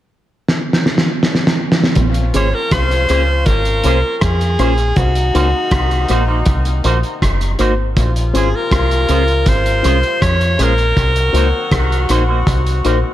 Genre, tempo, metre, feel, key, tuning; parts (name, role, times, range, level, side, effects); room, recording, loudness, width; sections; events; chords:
lovers rock reggae; 80 BPM; 4/4; straight; Bb minor; A4 = 435 Hz
cloth-damped thuddy drum kit; drums; 0.5-13.0 s; hi-hat, kick drum, rim click, snare drum; -17 LUFS; equal; gated reverb, dub echo
warm horn section; second line; 2.0-13.1 s; Bb2 to Gb4; -25 LUFS; left 3 dB; dub echo
deep dub fingered electric bass; bass; 2.0-13.0 s; Gb1 to F2; -16 LUFS; equal
mellow FM electric piano; accompaniment; 2.3-13.0 s; Db4 to C5; -23 LUFS; left 4 dB; chorus, phaser, dub echo
electric guitar with an envelope filter; stabs; 2.3-13.1 s; Ab3 to C5; -24 LUFS; right 4 dB; lush chorus, dub echo
edgy alto saxophone; melody; 2.4-12.1 s; Gb4 to Db5; -18 LUFS; equal; tape echo
light reverb, small room ambience; -12 LUFS; side -13 dB against mid
0.0-2.0 A section; 2.0-13.1 B section
drum fill 0.5-2.0
0.0 N.C.; 2.0 Bbm9; 5.0 Cm7b5; 8.0 Bbm9; 11.0 Cm7b5